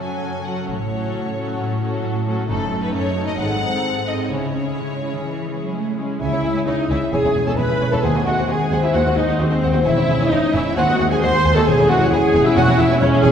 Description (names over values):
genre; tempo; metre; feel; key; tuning
classical, dramatic, fast romantic movement for symphony orchestra; 132 BPM; 4/4; rubato; C# minor; A4 = 440 Hz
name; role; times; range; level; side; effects
clear studio violin section; melody; 0.0-13.3 s; A4 to B#5; -28 LUFS; left 2 dB; none
warm symphonic violin section; second line; 0.0-13.3 s; D#4 to G#5; -27 LUFS; left 1 dB; none
warm symphonic viola section; accompaniment; 0.0-13.3 s; F#3 to B#4; -21 LUFS; right 1 dB; none
concert harp; arpeggios; 0.0-13.3 s; F#2 to E5; -24 LUFS; left 4 dB; none
rich symphonic cello section; bass; 0.0-13.3 s; C#2 to A3; -25 LUFS; right 2 dB; none
warm symphonic double bass section; bass; 0.7-13.3 s; E1 to D#2; -24 LUFS; right 1 dB; none
mellow silver concert flute; second line; 6.2-13.3 s; B#4 to B#5; -26 LUFS; right 1 dB; none
mellow French horn section; sustained chords; 6.2-13.3 s; G#3 to C#4; -26 LUFS; left 3 dB; none
timpani; percussion; 6.2-6.9 s; C#3; -31 LUFS; right 2 dB; none
room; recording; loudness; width
wet concert hall reverb, RT60 1.9 s; heard from further back in the room; -16 LUFS; side -8 dB against mid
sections
0.0-6.2 A section; 6.2-13.3 B section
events
none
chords
0.0 F#m; 0.7 F#m/A; 2.5 D#m7b5/F#; 3.4 G#7b9; 4.3 C#m; 7.1 C#m/E; 8.0 G#7/D#; 9.9 C#m/E; 10.8 G#7/D#; 11.7 C#m/E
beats
0.24 | 0.69 1.15 1.59 2.04 | 2.49 2.94 3.38 3.84 | 4.31 4.79 5.26 5.74 | 6.21 6.67 7.12 7.58 | 8.04 8.49 8.95 9.40 | 9.86 10.31 10.77 11.22 | 11.67 12.12 12.56 13.02